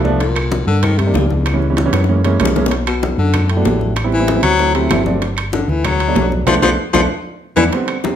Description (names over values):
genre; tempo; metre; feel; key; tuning
Afro-Cuban jazz; 191 BPM; 4/4; straight; unclear; A4 = 440 Hz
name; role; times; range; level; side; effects
warm baby grand piano; accompaniment; 0.0-8.2 s; D3 to E4; -19 LUFS; right 3 dB; none
hollow-body short-scale fingered electric bass; bass; 0.0-7.7 s; G1 to G2; -18 LUFS; equal; none
congas; percussion; 0.0-8.2 s; none; -24 LUFS; left 2 dB; none
bongos; percussion; 0.1-8.2 s; none; -24 LUFS; left 6 dB; none
warm baritone saxophone; second line; 0.2-8.2 s; Eb2 to F#3; -18 LUFS; left 5 dB; none
timbales; percussion; 0.2-8.2 s; none; -24 LUFS; right 7 dB; none
claves; percussion; 0.4-8.0 s; none; -28 LUFS; right 2 dB; none
room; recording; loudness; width
moderate large studio reverb, RT60 0.9 s; none; -13 LUFS; side -9 dB against mid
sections
0.0-7.7 A section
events
baritone saxophone solo 0.0-8.2; drum fill 1.9-2.7, 6.9-7.7; band accent 6.5-7.7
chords
0.2 Cm9; 1.5 C#m7b5; 2.1 F#7; 2.7 Bm7; 4.0 Am7; 4.6 D7; 5.2 Gmaj9; 6.5 Bm7b5; 7.1 E5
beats
| 0.20 0.51 0.83 1.14 | 1.46 1.77 2.08 2.40 | 2.71 3.02 3.34 3.65 | 3.96 4.28 4.59 4.91 | 5.22 5.53 5.84 6.16 | 6.47 6.79 7.10 7.41 | 7.73 8.04